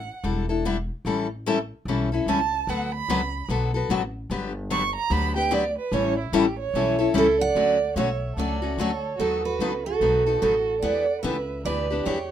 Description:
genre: acoustic string swing (jazz manouche)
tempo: 147 BPM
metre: 4/4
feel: swing 62% on 8ths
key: D major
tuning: A4 = 440 Hz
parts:
  - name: warm violin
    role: second line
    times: 0.0-12.3 s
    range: E4 to C#6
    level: -27 LUFS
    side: right 6 dB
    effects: none
  - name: upright bass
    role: bass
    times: 0.0-12.3 s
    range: E1 to E2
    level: -30 LUFS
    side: equal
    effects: none
  - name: picked steel-string acoustic guitar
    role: accompaniment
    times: 0.2-12.2 s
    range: D3 to A4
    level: -25 LUFS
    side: left 5 dB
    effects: none
  - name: picked steel-string acoustic guitar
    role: melody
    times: 7.2-12.3 s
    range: A4 to F#5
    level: -24 LUFS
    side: right 3 dB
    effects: none
room: light reverb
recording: minimal, uncompressed stereo recording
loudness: -22 LUFS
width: side -10 dB against mid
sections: 0.0-7.6 A section; 7.6-12.3 B section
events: violin solo 0.0-7.6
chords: 0.0 A7sus4; 1.0 A7; 2.7 D6; 4.3 Gmaj7; 5.9 A7; 7.6 Dmaj7; 9.2 B7; 10.8 Em7

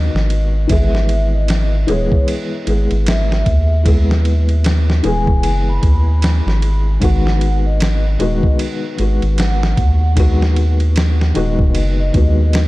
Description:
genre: trip hop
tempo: 76 BPM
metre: 4/4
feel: swing 60% on 16ths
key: G# minor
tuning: A4 = 439 Hz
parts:
  - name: vibraphone with soft mallets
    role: melody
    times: 0.0-12.7 s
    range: C#5 to B5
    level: -26 LUFS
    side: equal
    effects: dub echo
  - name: felt-muted upright piano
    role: accompaniment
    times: 0.0-12.7 s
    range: D#3 to G#4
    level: -21 LUFS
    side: left 2 dB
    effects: tremolo, tape echo
  - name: round analog bass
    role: bass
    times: 0.0-12.7 s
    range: D#1 to D#2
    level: -14 LUFS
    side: equal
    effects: none
  - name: dusty soul sampler-style drum kit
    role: drums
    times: 0.2-12.7 s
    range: kick drum, ride cymbal, snare drum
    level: -19 LUFS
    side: equal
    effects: none
room: little or no reverb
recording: dark, warm production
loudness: -13 LUFS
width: side -19 dB against mid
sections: 0.0-12.7 A section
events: none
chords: 0.0 G#m7; 0.7 E; 7.0 G#m7

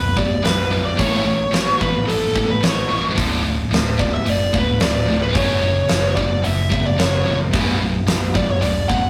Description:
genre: hard rock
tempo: 110 BPM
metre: 4/4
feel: straight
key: B minor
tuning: A4 = 439 Hz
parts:
  - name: biting lead guitar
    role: melody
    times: 0.0-9.1 s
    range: A4 to F#5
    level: -23 LUFS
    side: equal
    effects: overdrive
  - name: heavy high-gain guitar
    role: riff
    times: 0.0-9.1 s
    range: B1 to A3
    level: -24 LUFS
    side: equal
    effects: distortion
  - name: modern bright picked electric bass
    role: bass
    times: 0.0-9.1 s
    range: B0 to A1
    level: -27 LUFS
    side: equal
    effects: none
  - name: huge arena drum kit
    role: drums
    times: 0.2-9.0 s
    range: hi-hat, kick drum, snare drum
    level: -23 LUFS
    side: equal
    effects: none
room: moderate stone room reverb, RT60 1.1 s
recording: rough rehearsal-room recording, tube saturation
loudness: -18 LUFS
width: mono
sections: 0.0-9.1 A section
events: none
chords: 0.0 Bm; 1.0 A; 3.2 D5; 5.4 F#5; 7.5 Bm

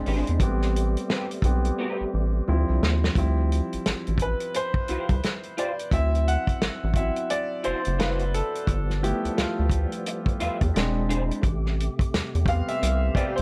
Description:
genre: R&B, neo-soul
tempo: 87 BPM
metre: 4/4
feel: swing 61% on 16ths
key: D dorian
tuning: A4 = 436 Hz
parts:
  - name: clear baby grand piano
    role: accompaniment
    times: 0.0-13.4 s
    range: F3 to F#5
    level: -31 LUFS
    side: equal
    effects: none
  - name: percussive tonewheel organ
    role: sustained chords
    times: 0.0-3.2, 8.7-13.4 s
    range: C3 to G4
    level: -38 LUFS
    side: equal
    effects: slow rotary speaker, overdrive, chorus vibrato
  - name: electric guitar through a small old amp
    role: second line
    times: 0.1-13.3 s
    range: C4 to E5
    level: -33 LUFS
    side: equal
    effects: ensemble chorus
  - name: rubbery square bass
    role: bass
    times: 0.1-13.4 s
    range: E1 to E2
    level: -27 LUFS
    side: equal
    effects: none
  - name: warm soul drum kit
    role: drums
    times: 0.1-13.4 s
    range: hi-hat, kick drum, snare drum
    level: -29 LUFS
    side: equal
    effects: none
room: little or no reverb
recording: none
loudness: -25 LUFS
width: mono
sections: 0.0-3.2 A section; 3.2-13.4 B section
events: grand piano solo 0.0-3.2, 3.2-13.4; drum fill 1.8-3.2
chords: 0.4 Am9; 2.5 Dm9; 3.2 Dm11; 5.9 D9; 8.7 G13; 10.7 E7b13; 11.4 Am9

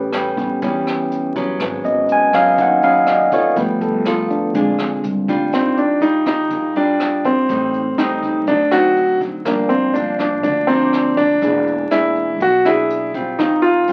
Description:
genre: bossa nova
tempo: 122 BPM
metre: 4/4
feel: straight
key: Eb major from 5.5 s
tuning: A4 = 439 Hz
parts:
  - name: barky tine electric piano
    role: accompaniment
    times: 0.0-13.9 s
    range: D3 to Eb6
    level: -20 LUFS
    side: equal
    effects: none
  - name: nylon-string guitar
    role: accompaniment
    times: 0.0-13.9 s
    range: G2 to A4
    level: -24 LUFS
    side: equal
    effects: none
  - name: upright bass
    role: bass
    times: 0.0-13.9 s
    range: E1 to E2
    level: -32 LUFS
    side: equal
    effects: none
  - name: vintage brush drum kit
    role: drums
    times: 0.1-13.9 s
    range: hi-hat, kick drum, rim click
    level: -32 LUFS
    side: equal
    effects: none
  - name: warm concert grand piano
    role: melody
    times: 5.5-13.9 s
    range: Bb3 to F#4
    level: -18 LUFS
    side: equal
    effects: none
room: light reverb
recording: very old 78 rpm record, vinyl crackle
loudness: -17 LUFS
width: mono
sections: 0.0-5.5 A section; 5.5-13.9 B section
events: tine electric piano solo 0.0-5.5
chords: 0.0 A9; 1.6 G#m7; 3.6 G9; 4.5 A#7; 5.5 Ebmaj9; 7.5 Am7b5; 8.5 D7b9; 9.5 Gm7; 11.4 E7#11; 13.4 Eb69

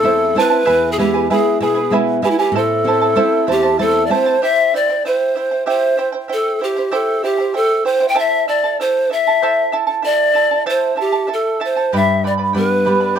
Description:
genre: andean folk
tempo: 64 BPM (dotted quarters)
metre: 6/8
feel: straight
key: A minor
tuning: A4 = 440 Hz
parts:
  - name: breathy pan flute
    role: melody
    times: 0.0-13.1 s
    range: E4 to G5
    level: -15 LUFS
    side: left 1 dB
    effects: none
  - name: charango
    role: accompaniment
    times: 0.0-13.2 s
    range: E4 to B5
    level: -19 LUFS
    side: right 6 dB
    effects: none
  - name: flamenco guitar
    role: accompaniment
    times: 0.0-4.4, 11.9-13.2 s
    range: E2 to E4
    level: -19 LUFS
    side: left 2 dB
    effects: none
room: light reverb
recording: close, detailed microphones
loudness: -14 LUFS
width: side -8 dB against mid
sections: 0.0-4.4 A section; 4.4-13.2 B section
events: none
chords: 0.0 Am; 0.7 E; 2.5 Am; 4.4 C; 8.2 Am; 11.9 G

